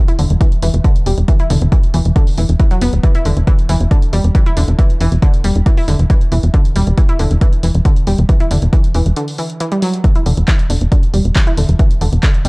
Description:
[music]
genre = driving peak-time techno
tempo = 137 BPM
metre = 4/4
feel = straight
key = E minor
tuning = A4 = 440 Hz
[part]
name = analog pluck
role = riff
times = 0.1-12.5 s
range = D3 to E4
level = -20 LUFS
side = equal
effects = chorus, sidechain pumping, analog delay
[part]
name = punchy analog drum machine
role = drums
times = 0.1-12.5 s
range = handclaps, hi-hat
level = -26 LUFS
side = equal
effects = sidechain pumping on hats
[part]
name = tight sequencer bass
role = bass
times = 0.2-12.5 s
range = D1 to E1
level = -13 LUFS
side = equal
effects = tube saturation, sidechain pumping
[part]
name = electronic kick drum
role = drums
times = 0.4-12.3 s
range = none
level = -11 LUFS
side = equal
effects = none
[sound]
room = little or no reverb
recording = dry, gritty hardware recording, cassette tape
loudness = -11 LUFS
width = side -28 dB against mid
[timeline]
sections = 0.0-12.5 A section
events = break 9.2-10.0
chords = none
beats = 0.41 0.84 | 1.28 1.72 2.16 2.60 | 3.03 3.47 3.91 4.35 | 4.79 5.22 5.66 6.10 | 6.54 6.98 7.41 7.85 | 8.29 8.73 9.16 9.60 | 10.04 10.48 10.92 11.36 | 11.79 12.23

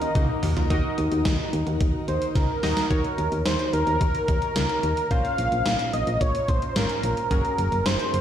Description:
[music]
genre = synth-pop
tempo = 109 BPM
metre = 4/4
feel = straight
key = unclear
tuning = A4 = 442 Hz
[part]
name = wide unison lead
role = melody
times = 0.0-8.2 s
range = Bb4 to F5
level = -26 LUFS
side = equal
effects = ping-pong delay
[part]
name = warm analog keys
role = accompaniment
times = 0.0-8.2 s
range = Bb3 to F5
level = -31 LUFS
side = right 1 dB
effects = chorus
[part]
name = ensemble organ-string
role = sustained chords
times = 0.0-2.9 s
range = Eb3 to Bb4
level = -31 LUFS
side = left 2 dB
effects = ensemble chorus
[part]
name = soft round pluck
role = arpeggios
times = 0.0-0.6 s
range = Db4 to F4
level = -38 LUFS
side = right 2 dB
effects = none
[part]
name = gated 80s digital drum machine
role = drums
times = 0.0-8.2 s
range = hi-hat, kick drum, snare drum, toms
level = -26 LUFS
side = equal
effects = gated reverb, gated reverb snare
[part]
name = solid FM bass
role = bass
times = 0.2-8.2 s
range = Gb1 to Eb2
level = -26 LUFS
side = equal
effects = none
[sound]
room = light reverb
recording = played on a big sound system in a bare room, stone room reverb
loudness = -21 LUFS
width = side -10 dB against mid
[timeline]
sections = 0.7-2.9 A section; 2.9-8.2 B section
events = drum fill 0.2-0.7, 2.4-2.9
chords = 0.0 Ebm; 0.7 Ebm7; 5.1 Bbmadd9; 7.3 Gbadd9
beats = 0.15 | 0.70 1.25 1.80 2.35 | 2.91 3.46 4.01 4.56 | 5.11 5.66 6.21 6.76 | 7.31 7.86

